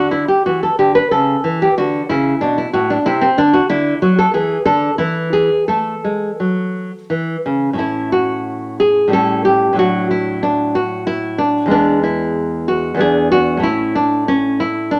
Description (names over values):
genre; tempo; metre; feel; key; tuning
classical, baroque-style dance for nylon-string guitar; 84-95 BPM; 3/4; rubato; D major, A major from 3.7 s; A4 = 440 Hz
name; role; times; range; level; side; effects
nylon-string guitar; solo; 0.0-15.0 s; E2 to B4; -16 LUFS; equal; none
room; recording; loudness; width
moderate studio reverb, RT60 0.8 s; none; -16 LUFS; mono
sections
0.0-7.8 A section; 7.8-15.0 B section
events
none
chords
0.0 D69; 1.1 A/C#; 1.8 D5; 3.1 Cadd9; 3.7 D; 4.3 A5/E; 5.0 N.C.; 5.7 A5; 7.8 A; 9.1 A7; 9.8 D/A; 11.7 E; 13.0 E7; 13.6 A